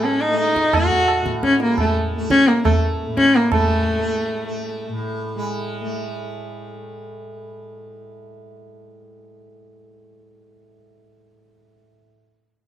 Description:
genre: indian classical, Hindustani.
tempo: 174 BPM.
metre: 4/4.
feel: straight.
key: A raga marwa.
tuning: A4 = 440 Hz.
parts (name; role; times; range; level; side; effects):
clear sarangi; melody; 0.0-4.9 s; A3 to F#4; -17 LUFS; left 1 dB; none.
tanpura; drone; 0.0-12.0 s; A2 to A3; -29 LUFS; equal; none.
tabla; percussion; 0.0-3.6 s; none; -22 LUFS; right 2 dB; none.
room: wet small room reverb, RT60 0.5 s.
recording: none.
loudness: -17 LUFS.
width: side -11 dB against mid.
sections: 0.0-3.5 A section; 3.5-6.3 B section.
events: none.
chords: none.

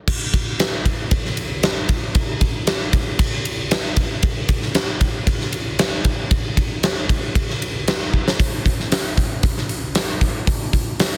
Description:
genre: rock.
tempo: 115 BPM.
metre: 4/4.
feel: straight.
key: none.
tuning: none.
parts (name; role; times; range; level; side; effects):
huge arena drum kit; drums; 0.1-11.1 s; crash cymbal, hi-hat, kick drum, ride cymbal, snare drum; -20 LUFS; equal; none.
room: light reverb.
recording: dense, heavily limited modern master.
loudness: -20 LUFS.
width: mono.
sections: 0.1-8.4 A section; 8.4-11.2 B section.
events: drum fill 8.1.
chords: none.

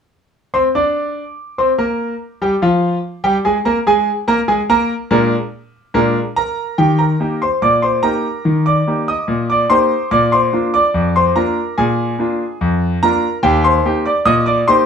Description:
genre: ragtime piano.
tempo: 72 BPM.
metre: 2/4.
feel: straight.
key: Eb major.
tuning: A4 = 440 Hz.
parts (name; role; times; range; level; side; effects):
clear grand piano; solo; 0.5-14.9 s; Eb2 to Eb6; -13 LUFS; equal; none.
room: wet studio reverb, RT60 0.5 s.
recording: band playing live in one room.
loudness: -13 LUFS.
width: side -7 dB against mid.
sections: 0.1-6.8 A section; 6.8-14.9 B section.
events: none.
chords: 0.1 Bb69; 3.5 Bb7; 6.8 Eb; 10.1 Bb7; 13.4 Eb.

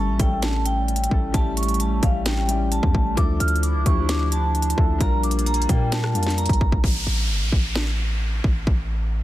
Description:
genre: hip hop, trap.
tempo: 131 BPM.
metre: 4/4.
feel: half-time.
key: unclear.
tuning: A4 = 440 Hz.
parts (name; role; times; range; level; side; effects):
vibraphone with medium hard mallets; melody; 0.0-6.8 s; F5 to F6; -27 LUFS; right 1 dB; low-pass filter.
dark grand piano; accompaniment; 0.0-6.9 s; F3 to Bb4; -29 LUFS; left 5 dB; low-pass filter.
hollow soft pad; sustained chords; 0.0-6.8 s; F3 to E4; -31 LUFS; right 1 dB; chorus.
hard-hitting 808-style bass; bass; 0.0-9.2 s; G1 to Bb2; -23 LUFS; equal; none.
trap drum kit; drums; 0.2-8.8 s; hi-hat, kick drum, rim click, snare drum; -22 LUFS; equal; none.
downlifter; sound effects; 6.8-9.2 s; none; -28 LUFS; equal; none.
room: digital ambience.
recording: dense, heavily limited modern master.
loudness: -19 LUFS.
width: side -15 dB against mid.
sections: 0.0-6.8 A section; 6.8-9.2 B section.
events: hi-hats muted 6.8-9.2.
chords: 0.0 A7; 3.2 Dmadd9; 5.0 Bb6; 6.8 A5.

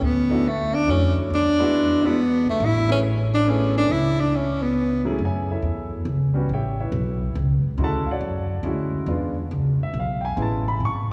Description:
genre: jazz.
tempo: 139 BPM.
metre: 3/4.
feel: swing 66% on 8ths.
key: F# minor.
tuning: A4 = 440 Hz.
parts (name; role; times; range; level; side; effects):
breathy tenor saxophone; melody; 0.0-5.1 s; A3 to E4; -23 LUFS; equal; none.
upright bass; bass; 0.0-11.1 s; G#1 to F#2; -26 LUFS; equal; none.
warm grand piano; accompaniment; 0.3-11.1 s; F#3 to C#6; -30 LUFS; equal; none.
room: wet church reverb, RT60 3.3 s.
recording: recorded in a church or concert hall.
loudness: -22 LUFS.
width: mono.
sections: 0.0-5.2 A section; 5.2-11.1 B section.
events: none.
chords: 0.0 Dmaj7; 1.3 E9; 2.6 Amaj9; 3.9 C#m7; 5.2 F#m9; 6.5 A9; 7.8 Dmaj9#11; 9.1 E7b9; 10.4 Amaj9.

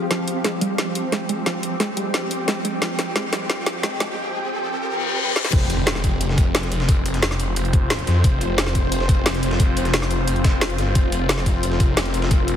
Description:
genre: dark technical drum and bass.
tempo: 177 BPM.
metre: 4/4.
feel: straight.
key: F minor.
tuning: A4 = 440 Hz.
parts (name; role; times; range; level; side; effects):
swarming drone; sustained chords; 0.0-12.6 s; F3 to G5; -26 LUFS; equal; built-in reverb, vintage 12-bit sampler grit, sidechain pumping.
wide unison pluck; arpeggios; 0.0-4.1 s; F3 to Ab3; -27 LUFS; right 2 dB; sidechain pumping, tape echo.
drum and bass drum kit; drums; 0.1-12.5 s; crash cymbal, hi-hat, snare drum; -24 LUFS; equal; overdrive.
riser, reverse cymbal and impact; sound effects; 2.3-6.9 s; none; -28 LUFS; left 2 dB; none.
snarling distorted saw bass; bass; 5.5-12.6 s; F1 to F2; -22 LUFS; equal; distortion, tube saturation.
breakbeat sampler-style drum kit; drums; 5.5-12.6 s; hi-hat, snare drum; -30 LUFS; equal; high-pass filter on hats, high-pass filter on snare, high-pass filter on room.
electronic kick drum; drums; 5.5-12.4 s; none; -18 LUFS; equal; overdrive.
room: light reverb, digital ambience.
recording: heavily compressed radio sound, multiband compression, high-pass filter.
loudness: -18 LUFS.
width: side -9 dB against mid.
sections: 0.0-5.5 A section; 5.5-12.6 B section.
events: build-up 0.0-5.5; filter sweep on synth arpeggio sound 0.0-5.5; filter sweep 0.0-5.5; drum fill 0.1-4.2, 5.4; riser 2.3-5.5; reverse cymbal 4.9-5.5; drop 5.5-12.6; impact 5.5-6.9.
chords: 0.0 F5.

